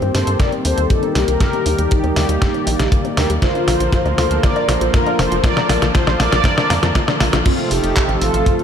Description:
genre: italo disco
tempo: 119 BPM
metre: 4/4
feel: straight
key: unclear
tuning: A4 = 439 Hz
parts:
  - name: mellow synth brass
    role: melody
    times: 0.0-8.6 s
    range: C4 to D5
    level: -20 LUFS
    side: left 1 dB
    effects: chorus, phaser
  - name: warm analog pad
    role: sustained chords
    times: 0.0-8.6 s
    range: C3 to A5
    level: -23 LUFS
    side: equal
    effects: chorus, vintage 12-bit sampler grit
  - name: analog pluck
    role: arpeggios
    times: 0.0-7.4 s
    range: F3 to F4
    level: -28 LUFS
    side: left 3 dB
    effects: chorus, ping-pong delay
  - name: tight sequencer bass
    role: bass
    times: 0.0-8.4 s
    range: F1 to G2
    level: -20 LUFS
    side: equal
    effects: none
  - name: detuned 8-bit digital drum machine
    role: drums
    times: 0.0-8.6 s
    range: crash cymbal, handclaps, hi-hat, snare drum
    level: -20 LUFS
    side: equal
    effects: studio reverb, gated reverb
  - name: kick drum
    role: drums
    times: 0.4-8.6 s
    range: none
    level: -18 LUFS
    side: equal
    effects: studio reverb
room: light reverb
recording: none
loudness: -14 LUFS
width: side -8 dB against mid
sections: 0.0-7.5 A section; 7.5-8.6 B section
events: drum fill 0.0-7.5; filter sweep on synth arpeggio sound 0.0-7.5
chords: 0.0 Eb6; 3.4 Bb; 7.5 F

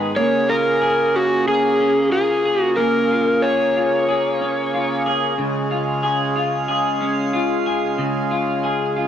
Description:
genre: dream pop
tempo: 92 BPM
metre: 4/4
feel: straight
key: unclear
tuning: A4 = 439 Hz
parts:
  - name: hand-pumped harmonium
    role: sustained chords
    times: 0.0-9.1 s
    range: C#3 to G#4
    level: -23 LUFS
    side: right 4 dB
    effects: none
  - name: clean electric guitar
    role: arpeggios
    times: 0.0-9.1 s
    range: G#2 to G#4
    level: -21 LUFS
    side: left 3 dB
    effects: lush chorus, analog delay
  - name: overdriven slide guitar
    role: melody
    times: 0.2-5.0 s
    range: F#4 to C#5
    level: -19 LUFS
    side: equal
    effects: analog delay
  - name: drifting glass-harmonics texture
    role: texture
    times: 6.4-8.6 s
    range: E#5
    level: -30 LUFS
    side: right 9 dB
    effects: chorus, built-in reverb, analog delay
room: light reverb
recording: dry, gritty hardware recording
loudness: -17 LUFS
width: side -9 dB against mid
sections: 0.0-9.1 A section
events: none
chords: 0.2 A#m7; 5.4 C#

